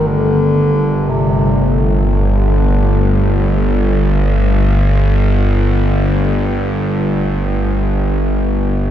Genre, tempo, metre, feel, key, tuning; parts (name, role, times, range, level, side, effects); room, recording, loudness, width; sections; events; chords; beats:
dark ambient drone; free time; A4 = 439 Hz
warm bass clarinet; melody; 0.0-3.6 s; C3 to D3; -19 LUFS; equal; ping-pong delay
bowed-like drone; drone; 0.0-8.9 s; G1; -13 LUFS; equal; built-in reverb
bronze singing bowl; texture; 0.0-8.9 s; A3 to A4; -28 LUFS; equal
wet cathedral reverb, RT60 5.4 s; dark, warm production; -12 LUFS; side -10 dB against mid
0.0-8.9 A section
0.0 G5
free time